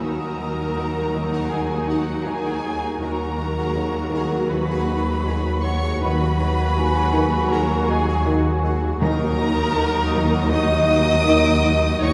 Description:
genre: cinematic, suspense film score.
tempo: 80 BPM.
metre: 4/4.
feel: straight.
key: Eb phrygian.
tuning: A4 = 442 Hz.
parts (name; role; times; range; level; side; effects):
rich chamber violin section; melody; 0.0-12.1 s; Gb5 to Eb6; -32 LUFS; equal; none.
rich chamber violin section; second line; 0.0-12.1 s; Gb4 to Eb5; -28 LUFS; equal; none.
rich studio viola section; accompaniment; 0.0-12.1 s; Gb3 to F#4; -29 LUFS; equal; none.
pulsing gated texture; sustained chords; 0.0-12.1 s; Eb4 to G#5; -34 LUFS; equal; chorus, built-in reverb.
bright studio cello section; riff; 0.0-12.1 s; Eb3 to Eb4; -29 LUFS; equal; none.
rich chamber double bass section; bass; 0.0-12.1 s; Eb2; -28 LUFS; equal; none.
rich studio cello section; bass; 0.0-12.1 s; Eb2; -28 LUFS; equal; none.
vibraphone with soft mallets; texture; 0.0-9.0 s; Bb4 to Eb6; -35 LUFS; equal; none.
warm studio violin section; texture; 0.0-2.6, 9.0-12.1 s; Eb6 to Bb6; -39 LUFS; equal; none.
timpani; percussion; 9.0-10.1 s; Eb3; -29 LUFS; equal; none.
room: wet scoring stage reverb, RT60 1.8 s.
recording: heard from further back in the room, nothing above 10.9 kHz.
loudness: -21 LUFS.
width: mono.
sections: 0.0-12.1 A section.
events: none.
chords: 0.0 Ebm; 3.0 Bmaj13/D#; 9.0 Ebm.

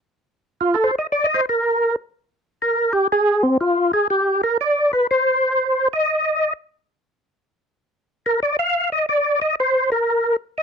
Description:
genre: jazz.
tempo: 120 BPM.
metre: 4/4.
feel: swing 68% on 8ths.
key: unclear.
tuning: A4 = 440 Hz.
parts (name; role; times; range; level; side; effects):
percussive tonewheel organ; solo; 0.6-10.6 s; C4 to F5; -17 LUFS; equal; slow rotary speaker, overdrive, chorus vibrato.
room: light reverb.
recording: dry, close 1970s-style studio recording.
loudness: -17 LUFS.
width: side -6 dB against mid.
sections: 0.0-10.6 A section.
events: tonewheel organ solo 0.0-10.6.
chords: none.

